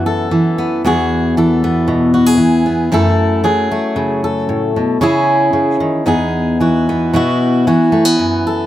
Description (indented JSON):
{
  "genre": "folk, solo fingerstyle acoustic guitar",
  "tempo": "114 BPM",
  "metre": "4/4",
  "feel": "rubato",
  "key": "E major",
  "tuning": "A4 = 441 Hz",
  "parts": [
    { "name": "fingerpicked steel-string acoustic guitar", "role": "solo", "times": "0.0-8.7 s", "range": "E2 to A4", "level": "-12 LUFS", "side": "equal", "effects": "none" }
  ],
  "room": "light reverb",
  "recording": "close, detailed microphones",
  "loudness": "-12 LUFS",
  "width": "side -13 dB against mid",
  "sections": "0.0-7.1 A section; 7.1-8.7 A section",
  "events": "none",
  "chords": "0.0 Bsus4; 0.8 Eadd9; 2.9 F#m7; 5.0 C#m; 6.1 Emaj7; 7.1 Bsus4"
}